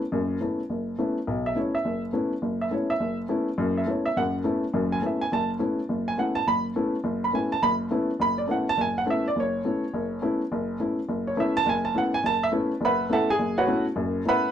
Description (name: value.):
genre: jazz.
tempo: 208 BPM.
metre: 4/4.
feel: swing 61% on 8ths.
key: unclear.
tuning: A4 = 440 Hz.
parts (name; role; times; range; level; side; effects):
dark baby grand piano; solo; 0.1-14.5 s; F#1 to B5; -23 LUFS; equal; none.
room: moderate studio ambience, RT60 0.5 s.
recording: none.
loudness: -23 LUFS.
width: side -9 dB against mid.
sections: 0.0-1.3 A section; 1.3-14.5 B section.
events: none.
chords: 0.0 B9sus4.